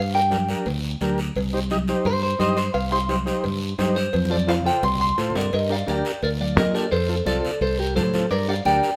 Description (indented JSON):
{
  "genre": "latin, cumbia",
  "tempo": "173 BPM",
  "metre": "4/4",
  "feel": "straight",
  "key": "G minor",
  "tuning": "A4 = 440 Hz",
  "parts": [
    { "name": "clean electric guitar", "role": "melody", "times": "0.0-9.0 s", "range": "G4 to C6", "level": "-26 LUFS", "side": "equal", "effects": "spring reverb" },
    { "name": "fingered electric bass", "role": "bass", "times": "0.0-8.8 s", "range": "C2 to Bb2", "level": "-28 LUFS", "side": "equal", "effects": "none" },
    { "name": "combo organ", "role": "accompaniment", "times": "0.1-8.9 s", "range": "C4 to Eb5", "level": "-30 LUFS", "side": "equal", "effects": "none" },
    { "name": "congas", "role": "percussion", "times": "0.3-8.8 s", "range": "none", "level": "-31 LUFS", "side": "equal", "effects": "none" },
    { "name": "cowbell and timbales", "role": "percussion", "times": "0.3-8.5 s", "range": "none", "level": "-33 LUFS", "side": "equal", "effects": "none" },
    { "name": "guiro", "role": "percussion", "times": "0.3-9.0 s", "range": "none", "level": "-37 LUFS", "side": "equal", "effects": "none" }
  ],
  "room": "moderate studio reverb, RT60 0.9 s",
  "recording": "none",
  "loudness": "-22 LUFS",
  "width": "mono",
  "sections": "0.0-5.5 A section; 5.5-9.0 B section",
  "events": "clean electric guitar solo 0.0-5.5; drum fill 4.1-5.5",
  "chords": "0.0 Gm; 1.4 Cm; 4.1 F; 5.5 Gm; 6.9 F; 8.3 Gm"
}